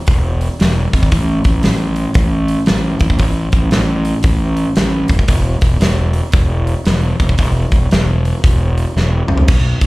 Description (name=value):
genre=blues rock power trio and southern rock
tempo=115 BPM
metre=4/4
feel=swing 63% on 8ths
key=unclear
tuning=A4 = 440 Hz
part: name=fuzz fingered electric bass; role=bass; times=0.1-9.9 s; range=E1 to C#2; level=-14 LUFS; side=equal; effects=overdrive
part: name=big rock drum kit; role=drums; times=0.1-9.9 s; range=crash cymbal, hi-hat, kick drum, snare drum, toms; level=-15 LUFS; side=equal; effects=none
room=little or no reverb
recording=live gig heard through the venue's PA, club reverb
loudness=-12 LUFS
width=side -21 dB against mid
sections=0.0-9.9 A section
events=drum fill 9.0-9.5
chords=none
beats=0.07 0.60 | 1.12 1.64 2.16 2.69 | 3.21 3.73 4.25 4.77 | 5.30 5.82 6.34 6.86 | 7.39 7.91 8.43 8.96 | 9.48